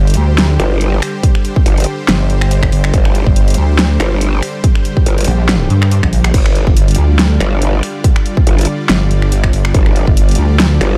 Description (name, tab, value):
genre	heavy wobble dubstep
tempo	141 BPM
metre	4/4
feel	swing 55% on 16ths, half-time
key	unclear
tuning	A4 = 440 Hz
part	supersaw pad	sustained chords	0.0-11.0 s	D3 to D5	-23 LUFS	equal	sidechain pumping
part	pulsing pluck wobble bass	bass	0.0-10.8 s	G1 to G2	-14 LUFS	equal	chorus, overdrive
part	dubstep drum kit	drums	0.1-10.9 s	crash cymbal, finger snaps, hi-hat, snare drum	-20 LUFS	equal	none
part	growl bass	bass	0.6-11.0 s	G1	-16 LUFS	equal	chorus, overdrive
part	electronic kick drum	drums	1.2-10.2 s	none	-14 LUFS	equal	none
room	little or no reverb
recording	dark, warm production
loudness	-12 LUFS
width	mono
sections	0.0-11.0 A section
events	none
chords	0.0 G5